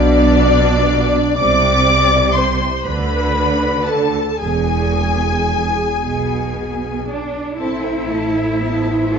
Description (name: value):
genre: classical, slow romantic movement for string orchestra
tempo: 37-41 BPM (dotted quarters)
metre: 6/8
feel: rubato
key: A minor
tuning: A4 = 440 Hz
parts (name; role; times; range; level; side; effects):
- clear studio violin section; melody; 0.0-9.2 s; D5 to D6; -20 LUFS; left 7 dB; none
- rich studio violin section; second line; 0.0-9.2 s; A4 to D6; -25 LUFS; left 2 dB; none
- warm studio viola section; accompaniment; 0.0-9.2 s; A3 to D5; -20 LUFS; right 1 dB; none
- clear studio cello section; bass; 0.0-9.2 s; E2 to E4; -20 LUFS; right 3 dB; none
- rich studio double bass section; bass; 0.0-9.2 s; E1 to D2; -20 LUFS; right 2 dB; none
room: moderate scoring stage reverb, RT60 1.7 s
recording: dark, warm production, nothing above 7.7 kHz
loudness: -14 LUFS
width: side -6 dB against mid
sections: 0.0-7.6 A section; 7.6-9.2 B section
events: none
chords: 0.0 Bm; 1.4 Csus2; 2.8 Bm7/D; 4.4 E; 7.6 Am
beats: | 1.37 2.85 | 4.41 6.03 | 7.59 9.16